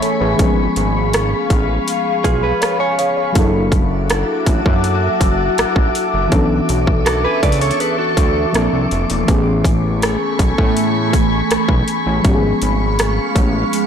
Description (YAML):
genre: contemporary R&B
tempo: 81 BPM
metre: 4/4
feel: straight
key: unclear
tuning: A4 = 440 Hz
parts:
  - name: mellow FM electric piano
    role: accompaniment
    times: 0.0-13.9 s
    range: D3 to G#5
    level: -20 LUFS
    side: left 2 dB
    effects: chorus
  - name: glassy FM pad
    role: sustained chords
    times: 0.0-13.9 s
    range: G#3 to D6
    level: -19 LUFS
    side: left 1 dB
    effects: ensemble chorus, built-in reverb
  - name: trap drum kit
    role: drums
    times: 0.0-13.9 s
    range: hi-hat, kick drum, rim click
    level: -18 LUFS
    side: equal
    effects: overdrive
  - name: fat analog bass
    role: bass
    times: 0.2-13.6 s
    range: E1 to A2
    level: -19 LUFS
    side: equal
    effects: none
  - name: direct-recorded clean electric guitar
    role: arpeggios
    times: 2.2-8.5 s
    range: E#4 to D5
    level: -21 LUFS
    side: right 6 dB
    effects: wide subtle chorus, tape echo
room: light reverb, digital ambience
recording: blown-out, overdriven recording, overdrive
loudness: -13 LUFS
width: side -8 dB against mid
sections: 0.0-13.9 A section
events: none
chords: 0.4 C#7/G#; 3.4 F#7alt; 6.3 Bm11; 8.5 Bbmaj9; 9.3 Amaj9; 12.2 C#7/G#